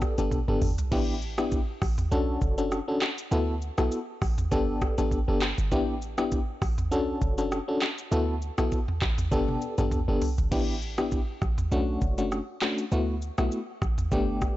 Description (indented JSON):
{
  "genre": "afrobeats",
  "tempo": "100 BPM",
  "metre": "4/4",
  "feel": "swing 55% on 16ths",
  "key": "D major",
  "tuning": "A4 = 440 Hz",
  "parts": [
    { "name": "FM electric piano with tremolo", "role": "accompaniment", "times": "0.0-14.5 s", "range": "A3 to A4", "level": "-28 LUFS", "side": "left 2 dB", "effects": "none" },
    { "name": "afro-pop drum kit", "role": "drums", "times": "0.0-14.6 s", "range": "crash cymbal, handclaps, hi-hat, kick drum, rim click, shaker, toms", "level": "-29 LUFS", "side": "right 1 dB", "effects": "none" },
    { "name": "short 808-style bass", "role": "bass", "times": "0.2-14.5 s", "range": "F#1 to D2", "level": "-29 LUFS", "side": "right 1 dB", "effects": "none" }
  ],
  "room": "little or no reverb",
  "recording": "blown-out, overdriven recording, overdrive, nothing above 7.9 kHz",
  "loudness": "-25 LUFS",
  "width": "side -16 dB against mid",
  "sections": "0.0-10.5 A section; 10.5-14.6 B section",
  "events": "drum fill 0.3-0.9, 9.3-10.5",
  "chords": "0.0 Gadd9; 0.9 A7sus4; 2.1 Bm7; 3.3 D6; 4.5 Gadd9; 5.7 A7sus4; 6.9 Bm7; 8.1 D6; 9.3 Gadd9; 10.5 A7sus4; 11.7 Bm7; 12.9 D6"
}